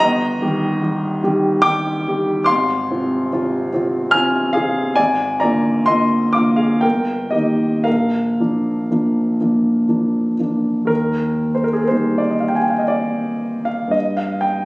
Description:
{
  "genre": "classical, romantic nocturne for solo piano",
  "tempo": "56-75 BPM",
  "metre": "3/4",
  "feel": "rubato",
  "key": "Eb major",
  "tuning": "A4 = 440 Hz",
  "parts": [
    { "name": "warm grand piano", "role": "solo", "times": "0.0-14.7 s", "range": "G1 to F6", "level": "-15 LUFS", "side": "equal", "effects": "none" }
  ],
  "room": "light reverb",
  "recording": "recorded on a phone in the room, studio reverb, compression",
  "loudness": "-15 LUFS",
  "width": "side -22 dB against mid",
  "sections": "0.0-10.9 A section; 10.9-14.7 B section",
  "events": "none",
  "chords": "0.0 Eb/G; 2.5 Fm/Ab; 5.0 Bb7/Ab; 6.8 Eb/G; 7.9 Bb; 10.9 Eb; 13.9 Eb/G",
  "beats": "| 0.02 0.83 1.66 | 2.49 3.33 4.14 | 4.99 5.89 6.84 | 7.86 8.91 9.89 | 10.90 11.91 12.93 | 13.95"
}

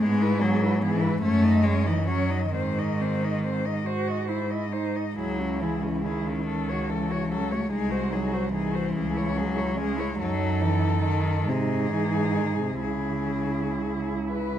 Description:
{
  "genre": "classical, lyrical piece for cello ensemble",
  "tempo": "40-51 BPM (dotted quarters)",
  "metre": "6/8",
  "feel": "rubato",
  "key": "C# minor",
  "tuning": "A4 = 440 Hz",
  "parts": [
    { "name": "rich cello", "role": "melody", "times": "0.0-14.6 s", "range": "E4 to D#5", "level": "-32 LUFS", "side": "left 6 dB", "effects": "none" },
    { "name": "rich cello", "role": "second line", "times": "0.0-14.6 s", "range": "B3 to F#4", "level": "-32 LUFS", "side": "right 8 dB", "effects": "none" },
    { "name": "warm cello", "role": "accompaniment", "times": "0.0-14.3 s", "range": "B#2 to A3", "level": "-28 LUFS", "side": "left 2 dB", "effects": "none" },
    { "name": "warm cello", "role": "bass", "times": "0.0-14.6 s", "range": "B#1 to G#2", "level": "-27 LUFS", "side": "right 2 dB", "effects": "none" }
  ],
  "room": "moderate large studio reverb, RT60 1.4 s",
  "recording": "none",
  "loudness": "-23 LUFS",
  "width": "side -10 dB against mid",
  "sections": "0.0-14.6 A section",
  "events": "none",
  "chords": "0.0 E/G#; 1.2 F#m13; 2.5 G#; 5.2 C#m; 6.5 F#m/C#; 7.7 G#7/B#; 8.9 C#m; 10.2 D#dim/F#; 11.5 G#5; 12.8 C#m",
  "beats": "| 0.01 1.22 | 2.53 3.85 | 5.16 6.47 | 7.71 8.94 | 10.18 11.46 | 12.81 14.28"
}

